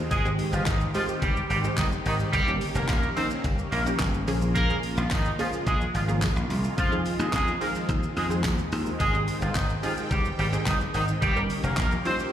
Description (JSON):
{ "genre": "dance-pop", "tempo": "108 BPM", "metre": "4/4", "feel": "straight", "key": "unclear", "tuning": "A4 = 440 Hz", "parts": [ { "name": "wide unison pluck", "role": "accompaniment", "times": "0.0-12.3 s", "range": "Eb3 to Bb4", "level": "-34 LUFS", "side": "right 1 dB", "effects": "slapback echo" }, { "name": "filtered supersaw swell", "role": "sustained chords", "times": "0.0-12.3 s", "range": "Db3 to G5", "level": "-33 LUFS", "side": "equal", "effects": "phaser, sidechain pumping" }, { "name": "warm horn section", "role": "melody", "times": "0.1-12.1 s", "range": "Eb3 to C5", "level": "-29 LUFS", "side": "equal", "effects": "sidechain pumping, slapback echo, ping-pong delay" }, { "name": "dry thumbed slap bass", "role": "bass", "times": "0.1-11.9 s", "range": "F1 to F2", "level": "-28 LUFS", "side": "equal", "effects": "sidechain pumping" }, { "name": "pop drum kit", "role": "drums", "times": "0.1-12.3 s", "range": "handclaps, hi-hat, kick drum, shaker, snare drum", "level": "-29 LUFS", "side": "equal", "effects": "overdrive" }, { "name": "tambourine", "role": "percussion", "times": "0.1-12.2 s", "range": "none", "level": "-48 LUFS", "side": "left 2 dB", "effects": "none" } ], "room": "light reverb, digital ambience", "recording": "live gig heard through the venue's PA, recital hall reverb", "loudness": "-23 LUFS", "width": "side -10 dB against mid", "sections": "0.0-12.3 A section", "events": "none", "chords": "0.1 Abmaj7; 2.3 Eb7; 4.3 Bbm7; 6.8 Fm7; 9.0 Abmaj7; 11.2 Eb7", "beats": "| 0.11 0.67 1.22 1.78 | 2.33 2.89 3.44 4.00 | 4.56 5.11 5.67 6.22 | 6.78 7.33 7.89 8.45 | 9.00 9.56 10.11 10.67 | 11.22 11.78" }